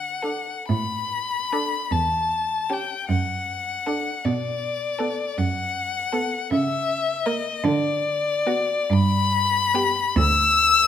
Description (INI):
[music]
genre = classical, slow romantic movement for string quartet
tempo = 52 BPM (dotted quarters)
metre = 6/8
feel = uneven beats, rubato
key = D major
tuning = A4 = 440 Hz
[part]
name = clear violin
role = melody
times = 0.0-10.9 s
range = D5 to E6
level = -22 LUFS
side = left 5 dB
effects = none
[part]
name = rich cello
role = bass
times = 0.0-10.9 s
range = D2 to D3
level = -24 LUFS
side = right 3 dB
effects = none
[part]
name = rich violin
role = second line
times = 0.2-10.1 s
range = F#4 to A#4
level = -31 LUFS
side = left 1 dB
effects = none
[part]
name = warm viola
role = accompaniment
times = 0.2-10.1 s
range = A#3 to D4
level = -32 LUFS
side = right 4 dB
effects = none
[sound]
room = moderate recital hall reverb, RT60 1.3 s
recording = none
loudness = -21 LUFS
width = side -9 dB against mid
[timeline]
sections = 0.0-10.9 A section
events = none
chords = 0.0 D; 1.9 C#dim/E; 3.1 D/F#; 4.2 Bm7; 6.5 A#dim/C#; 7.6 Bm/D; 8.9 G